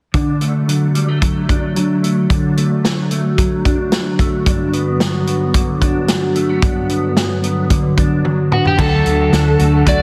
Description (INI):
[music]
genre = dream pop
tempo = 111 BPM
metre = 4/4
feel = straight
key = D major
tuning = A4 = 440 Hz
[part]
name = warbly tape-like pad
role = sustained chords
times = 0.1-10.0 s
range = D3 to A5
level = -23 LUFS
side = equal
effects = chorus, built-in reverb
[part]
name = mellow electric guitar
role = arpeggios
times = 0.1-10.0 s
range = G2 to D4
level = -20 LUFS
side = equal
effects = ensemble chorus, tape echo
[part]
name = vintage drum kit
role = drums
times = 0.1-10.0 s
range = crash cymbal, hi-hat, kick drum, snare drum, toms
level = -20 LUFS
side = equal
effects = none
[part]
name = electric slide guitar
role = melody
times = 8.5-10.0 s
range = F#4 to D5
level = -19 LUFS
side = equal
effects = tape echo
[part]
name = clean electric guitar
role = accompaniment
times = 8.8-10.0 s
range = D3 to F#4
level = -21 LUFS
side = equal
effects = harmonic tremolo, analog chorus
[part]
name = vintage muted fingered electric bass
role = bass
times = 8.8-10.0 s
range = D2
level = -20 LUFS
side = equal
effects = none
[sound]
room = wet concert hall reverb, RT60 1.9 s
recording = heavily compressed radio sound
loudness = -16 LUFS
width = mono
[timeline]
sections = 0.1-8.8 A section; 8.8-10.0 B section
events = drum fill 8.2-8.8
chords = 0.1 D; 4.5 Gmaj7; 8.8 D